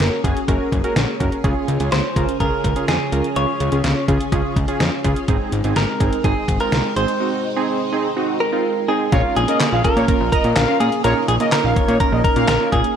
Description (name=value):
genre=synth-pop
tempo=125 BPM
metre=4/4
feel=straight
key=Bb minor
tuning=A4 = 440 Hz
part: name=direct-recorded clean electric guitar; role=melody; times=0.0-12.9 s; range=F4 to Db5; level=-22 LUFS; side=right 1 dB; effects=wide subtle chorus, tape echo
part: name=warm analog keys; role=accompaniment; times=0.0-12.8 s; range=Bb3 to Db5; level=-23 LUFS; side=right 4 dB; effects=chorus, tremolo
part: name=string machine, full ensemble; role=sustained chords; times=0.0-12.9 s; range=Db3 to Ab4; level=-26 LUFS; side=equal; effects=phaser, ensemble chorus
part: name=fat analog bass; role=bass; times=0.0-12.8 s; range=Gb1 to Bb2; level=-20 LUFS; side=left 1 dB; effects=none
part: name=detuned 8-bit digital drum machine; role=drums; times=0.0-13.0 s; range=handclaps, hi-hat, kick drum, snare drum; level=-21 LUFS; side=left 1 dB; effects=none
part: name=analog synth brass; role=second line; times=9.1-12.5 s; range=Db5 to F5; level=-24 LUFS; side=left 3 dB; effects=chorus, tape echo
room=light reverb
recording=dark, warm production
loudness=-16 LUFS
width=side -8 dB against mid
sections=0.0-9.1 A section; 9.1-13.0 B section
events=none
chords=0.0 Gb; 1.4 Db; 5.3 Ab; 9.1 Bbm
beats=0.00 0.48 0.96 | 1.44 1.92 2.40 2.88 | 3.36 3.84 4.32 4.80 | 5.28 5.76 6.24 6.72 | 7.20 7.68 8.16 8.64 | 9.12 9.60 10.08 10.56 | 11.04 11.52 12.00 12.48